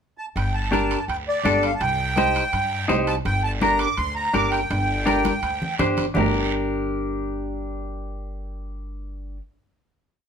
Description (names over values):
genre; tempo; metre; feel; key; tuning
latin, cumbia; 166 BPM; 4/4; straight; G minor; A4 = 437 Hz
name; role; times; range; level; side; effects
accordion; melody; 0.2-5.8 s; D5 to D6; -24 LUFS; right 2 dB; light tremolo tuning
upright bass; bass; 0.4-9.4 s; G1 to G2; -28 LUFS; equal; none
congas; percussion; 0.4-6.2 s; none; -29 LUFS; left 3 dB; none
guiro; percussion; 0.4-6.2 s; none; -36 LUFS; right 7 dB; none
timbales; percussion; 0.4-6.2 s; none; -31 LUFS; right 7 dB; none
clean electric guitar; accompaniment; 0.7-9.4 s; D4 to C5; -23 LUFS; left 1 dB; none
room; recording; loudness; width
light reverb; minimal, uncompressed stereo recording; -20 LUFS; side -7 dB against mid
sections
0.0-0.4 pickup bar; 0.4-6.2 A section; 6.2-9.1 final chord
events
drum fill 5.3-6.2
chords
0.4 Gm; 1.8 Cm; 3.3 Gm